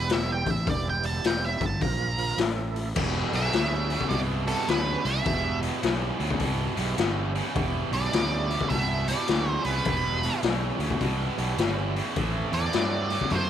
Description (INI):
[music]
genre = blues rock power trio and southern rock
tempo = 104 BPM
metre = 4/4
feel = swing 64% on 8ths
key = E minor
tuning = A4 = 444 Hz
[part]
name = octave-fuzz lead guitar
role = melody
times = 0.0-13.5 s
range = A4 to A#5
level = -30 LUFS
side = right 3 dB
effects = wah, distortion
[part]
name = overdriven tonewheel organ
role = sustained chords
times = 0.0-13.2 s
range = E3 to A#4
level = -37 LUFS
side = right 11 dB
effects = slow rotary speaker, chorus vibrato
[part]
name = fuzz fingered electric bass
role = bass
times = 0.0-13.5 s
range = E1 to G2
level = -29 LUFS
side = right 1 dB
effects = overdrive
[part]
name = raw garage drum kit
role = drums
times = 0.1-13.5 s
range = crash cymbal, hi-hat, kick drum, snare drum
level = -29 LUFS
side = left 5 dB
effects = none
[part]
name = tight distorted guitar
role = riff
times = 3.0-13.5 s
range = E2 to F#3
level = -30 LUFS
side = right 1 dB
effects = distortion
[sound]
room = small room ambience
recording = 1960s-style stereo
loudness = -24 LUFS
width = side -10 dB against mid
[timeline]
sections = 0.0-3.0 A section; 3.0-13.5 B section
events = lead electric guitar solo 0.0-3.0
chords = 0.0 Em; 1.8 A#5; 2.4 A5; 3.0 Em; 12.2 Am